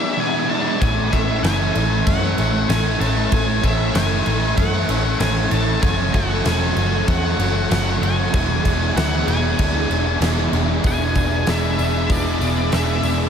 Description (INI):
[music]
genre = rock, shoegaze and dream pop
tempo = 96 BPM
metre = 4/4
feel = straight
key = A major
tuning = A4 = 444 Hz
[part]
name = octave-fuzz lead guitar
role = melody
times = 0.0-13.2 s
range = D5 to A5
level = -25 LUFS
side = left 1 dB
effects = distortion, analog delay
[part]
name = phased string machine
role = sustained chords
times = 0.0-13.3 s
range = G#3 to D6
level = -29 LUFS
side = equal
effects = ensemble chorus, phaser
[part]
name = mellow electric guitar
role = arpeggios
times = 0.0-13.3 s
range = E3 to G#4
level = -30 LUFS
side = left 1 dB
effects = none
[part]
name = crunchy overdriven guitar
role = riff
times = 0.0-13.3 s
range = E3 to D5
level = -25 LUFS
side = left 8 dB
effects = lush chorus
[part]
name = crunchy overdriven guitar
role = riff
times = 0.0-13.3 s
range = E2 to F#4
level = -23 LUFS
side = right 7 dB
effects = reverse reverb
[part]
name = vintage muted picked electric bass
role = bass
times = 0.8-13.3 s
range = E1 to F#2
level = -22 LUFS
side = equal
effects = none
[part]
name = huge arena drum kit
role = drums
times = 0.8-13.2 s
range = crash cymbal, hi-hat, kick drum, snare drum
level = -24 LUFS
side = equal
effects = none
[sound]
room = wet huge ambient reverb, RT60 9.1 s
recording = dreamy mix soaked in reverb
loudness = -16 LUFS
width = side -7 dB against mid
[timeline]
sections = 0.0-10.8 A section; 10.8-13.3 B section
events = none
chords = 0.0 E9; 0.8 Amaj7; 5.8 F#m7; 8.3 E9; 10.8 E7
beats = 0.19 | 0.81 1.44 2.07 2.69 | 3.32 3.95 4.57 5.20 | 5.83 6.46 7.08 7.71 | 8.34 8.96 9.59 10.22 | 10.84 11.47 12.10 12.72